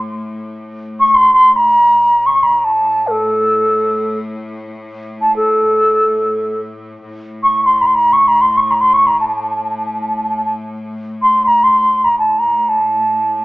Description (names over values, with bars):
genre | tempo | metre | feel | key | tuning
Arabic maqam ensemble | free time | none | none | unclear | A4 = 436 Hz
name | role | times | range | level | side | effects
rich studio cello section | drone | 0.0-13.4 s | A2 | -28 LUFS | left 1 dB | none
mellow baroque flute | melody | 1.0-13.4 s | A4 to C#6 | -11 LUFS | equal | none
room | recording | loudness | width
moderate large studio reverb, RT60 1.2 s | band playing live in one room, small speaker sound | -11 LUFS | side -22 dB against mid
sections
0.0-7.0 A section; 7.0-13.4 A section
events
none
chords
none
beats
free time